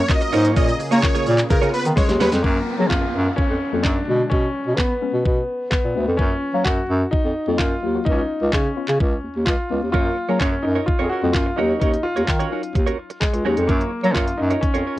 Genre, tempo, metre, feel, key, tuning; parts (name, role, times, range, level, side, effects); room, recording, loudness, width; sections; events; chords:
dance-pop; 128 BPM; 4/4; straight; F# major; A4 = 441 Hz
supersaw chords; melody; 0.0-2.3 s; A#4 to D#5; -24 LUFS; equal; sidechain pumping, cassette tape, analog delay
warm analog pad; sustained chords; 0.0-2.4 s; C#3 to A#4; -29 LUFS; right 1 dB; chorus, sidechain pumping, cassette tape
soft round pluck; accompaniment; 0.1-14.7 s; D3 to E#5; -29 LUFS; left 9 dB; chorus, sidechain pumping, cassette tape
direct-recorded clean electric guitar; riff; 0.1-2.4, 9.9-15.0 s; A#3 to C#5; -26 LUFS; right 9 dB; wide subtle chorus, cassette tape
pop drum kit; drums; 0.1-14.9 s; handclaps, hi-hat, kick drum, shaker, snare drum; -21 LUFS; equal; cassette tape
warm bass clarinet; bass; 0.3-14.8 s; C#2 to B3; -20 LUFS; equal; sidechain pumping
warm concert grand piano; melody; 2.0-15.0 s; G#3 to G#4; -24 LUFS; left 1 dB; cassette tape, analog delay
downlifter; sound effects; 2.4-6.2 s; -32 LUFS; right 3 dB
light reverb; home recording on cassette; -17 LUFS; side -16 dB against mid
0.0-2.4 A section; 2.4-15.0 B section
drop 0.0-2.4; drum fill 2.0-2.4
0.0 F#maj7; 0.6 A#m7; 1.5 C#7; 2.4 F#maj7; 4.1 Bm6; 6.2 F#maj7; 8.1 C#7; 9.9 F#maj7; 11.6 D#m7; 13.7 F#maj7